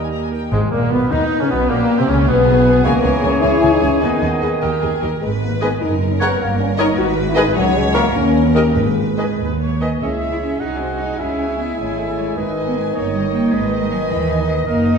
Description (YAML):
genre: quick classical-period movement for symphony orchestra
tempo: 102 BPM (dotted quarters)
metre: 6/8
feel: rubato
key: G# minor, C# minor from 10.0 s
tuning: A4 = 443 Hz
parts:
  - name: clear clarinet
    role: second line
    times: 0.0-15.0 s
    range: G#3 to C#5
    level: -27 LUFS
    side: left 1 dB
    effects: none
  - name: rich chamber violin section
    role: second line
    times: 0.0-15.0 s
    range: D#4 to B5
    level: -28 LUFS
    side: left 2 dB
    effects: none
  - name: warm cor anglais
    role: second line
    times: 0.0-15.0 s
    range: G#3 to F#5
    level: -27 LUFS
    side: right 2 dB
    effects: none
  - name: clear bassoon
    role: accompaniment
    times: 0.0-15.0 s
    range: G#2 to G#3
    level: -27 LUFS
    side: right 2 dB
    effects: none
  - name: rich symphonic viola section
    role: accompaniment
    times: 0.0-15.0 s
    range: G#3 to D#5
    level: -26 LUFS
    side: right 1 dB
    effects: none
  - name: clear chamber double bass section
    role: bass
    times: 0.0-15.0 s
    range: F#1 to D#2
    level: -22 LUFS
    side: right 4 dB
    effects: none
  - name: warm studio cello section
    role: bass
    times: 0.0-15.0 s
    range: C#2 to E4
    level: -22 LUFS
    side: right 1 dB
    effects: none
  - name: warm chamber violin section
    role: melody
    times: 0.5-15.0 s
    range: G#3 to G#5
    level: -30 LUFS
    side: left 3 dB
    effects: none
  - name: silver concert flute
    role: second line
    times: 0.5-15.0 s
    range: B#3 to A#5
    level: -28 LUFS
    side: left 2 dB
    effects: none
  - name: mellow French horn section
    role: sustained chords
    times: 0.5-15.0 s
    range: F#3 to C#5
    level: -20 LUFS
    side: left 3 dB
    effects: none
  - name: timpani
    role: percussion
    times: 0.5-1.1, 8.8-9.4 s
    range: G#2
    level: -26 LUFS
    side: left 2 dB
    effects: none
room: wet scoring stage reverb, RT60 1.7 s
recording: dark, warm production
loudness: -15 LUFS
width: side -6 dB against mid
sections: 0.5-10.0 A section; 10.0-15.0 B section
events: none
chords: 0.0 D#; 0.5 G#m; 1.7 Gdim/Bb; 2.3 G#m/B; 2.8 C#m; 4.0 G#m/D#; 4.6 D#; 5.2 G#m; 5.8 F#; 6.4 D#7/G; 7.0 G#m; 7.6 A#m/C#; 8.1 D#7; 8.8 G#m; 10.0 C#m; 10.6 G#7/B#; 11.2 C#m; 12.4 G#m; 13.0 D#7/G; 13.5 G#m